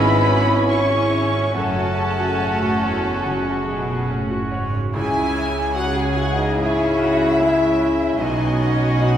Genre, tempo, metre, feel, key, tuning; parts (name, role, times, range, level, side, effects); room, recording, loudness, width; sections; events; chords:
cinematic, emotional film score for orchestra; 73 BPM; 4/4; rubato; C# minor; A4 = 440 Hz
dark studio violin section; melody; 0.0-9.2 s; D#5 to C#6; -28 LUFS; left 2 dB
dark clarinet; second line; 0.0-9.2 s; D#4 to F#5; -24 LUFS; left 1 dB
mellow hollow concert flute; second line; 0.0-9.2 s; D#5 to G#5; -30 LUFS; equal
warm symphonic violin section; second line; 0.0-9.2 s; A4 to G#5; -27 LUFS; left 2 dB
clear concert grand piano; accompaniment; 0.0-9.2 s; B1 to D#5; -28 LUFS; equal
clear studio viola section; accompaniment; 0.0-9.2 s; G#3 to G#4; -25 LUFS; right 1 dB
warm French horn section; sustained chords; 0.0-9.2 s; F#3 to C#4; -28 LUFS; left 2 dB
concert harp; arpeggios; 0.0-9.2 s; F#2 to C#6; -30 LUFS; left 2 dB
rich symphonic cello section; bass; 0.0-9.2 s; E2 to C#3; -24 LUFS; right 2 dB
rich symphonic double bass section; bass; 0.0-9.2 s; F#1 to C#2; -28 LUFS; right 2 dB
wet recital hall reverb, RT60 1.4 s; recorded in a church or concert hall; -17 LUFS; side -10 dB against mid
0.0-4.9 A section; 4.9-9.2 B section
0.0 C#m/G#; 1.6 F#m; 4.9 C#m; 8.2 Badd9